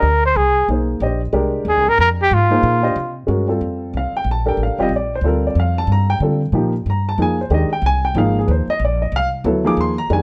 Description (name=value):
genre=modal jazz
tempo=185 BPM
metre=3/4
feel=swing 63% on 8ths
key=F dorian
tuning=A4 = 440 Hz
part: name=breathy trumpet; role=melody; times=0.0-3.2 s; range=F4 to C5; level=-17 LUFS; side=equal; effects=none
part: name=warm baby grand piano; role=accompaniment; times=0.0-10.2 s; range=Eb3 to D6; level=-21 LUFS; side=equal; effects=none
part: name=upright bass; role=bass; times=0.0-10.2 s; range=F1 to D3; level=-22 LUFS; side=equal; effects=none
room=light reverb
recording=none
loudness=-18 LUFS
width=mono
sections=0.0-3.3 A section; 3.3-10.2 B section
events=none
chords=0.0 Fm11; 3.3 Gm9; 7.2 Fm9